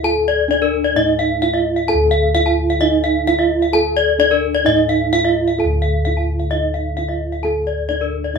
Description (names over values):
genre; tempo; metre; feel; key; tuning
Balinese gamelan; 130 BPM; 4/4; straight; D pelog; A4 = 441 Hz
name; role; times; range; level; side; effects
gamelan-type bronze metallophone; melody; 0.0-8.4 s; D4 to A4-45c; -19 LUFS; right 3 dB; none
gamelan-type bronze metallophone; arpeggios; 0.0-8.4 s; Bb4-40c to A5-45c; -18 LUFS; left 3 dB; none
gamelan-type bossed gongs; bass; 0.0-8.4 s; D2 to A4-45c; -21 LUFS; equal; none
room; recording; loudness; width
moderate studio reverb, RT60 0.6 s; band playing live in one room; -14 LUFS; side -5 dB against mid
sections
0.0-1.9 A section; 1.9-8.4 A section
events
none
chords
none